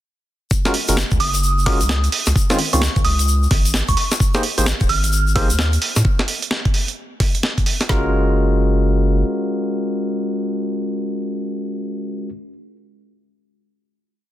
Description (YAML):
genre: UK garage, two-step garage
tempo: 130 BPM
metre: 4/4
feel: swing 63% on 16ths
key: Gb major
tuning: A4 = 440 Hz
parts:
  - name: garage drum kit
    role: drums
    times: 0.5-8.0 s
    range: kick drum, snare drum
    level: -18 LUFS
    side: equal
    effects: none
  - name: egg shaker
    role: percussion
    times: 0.5-6.0 s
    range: none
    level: -26 LUFS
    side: left 3 dB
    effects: none
  - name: barky tine electric piano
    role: stabs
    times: 0.7-12.3 s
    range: Eb3 to C5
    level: -22 LUFS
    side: left 1 dB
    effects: overdrive, ping-pong delay
  - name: breakbeat sampler-style drum kit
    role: drums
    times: 0.7-7.9 s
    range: hi-hat, snare drum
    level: -22 LUFS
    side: right 1 dB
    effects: none
  - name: saturated sub bass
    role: bass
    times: 0.9-9.2 s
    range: Eb1 to A2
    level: -18 LUFS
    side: equal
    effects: none
  - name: glassy synth bell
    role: melody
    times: 1.2-5.5 s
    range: Db6 to F6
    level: -24 LUFS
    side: right 2 dB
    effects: chorus, tremolo, ping-pong delay
room: digital ambience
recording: dense, heavily limited modern master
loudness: -16 LUFS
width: side -13 dB against mid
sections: 0.5-7.9 drop; 7.9-11.6 final chord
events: drop 0.5-7.9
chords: 0.5 Gbmaj9; 2.1 Db5; 4.0 Abmaj9; 5.8 N.C.; 7.9 Gbmaj9